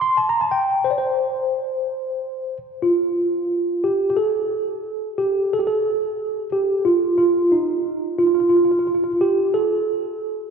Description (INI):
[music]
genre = turkish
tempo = 90 BPM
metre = 4/4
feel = straight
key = unclear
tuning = A4 = 439 Hz
[part]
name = tine electric piano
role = melody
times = 0.0-10.5 s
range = Eb4 to C6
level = -18 LUFS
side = right 1 dB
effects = medium stereo tremolo
[sound]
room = wet church reverb, RT60 2.6 s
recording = recorded in a church or concert hall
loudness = -18 LUFS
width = side -6 dB against mid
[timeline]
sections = 0.0-2.8 A section; 2.8-10.5 B section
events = none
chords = none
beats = | 0.16 0.83 1.50 2.17 | 2.84 3.51 4.18 4.85 | 5.52 6.19 6.86 7.53 | 8.20 8.87 9.53 10.20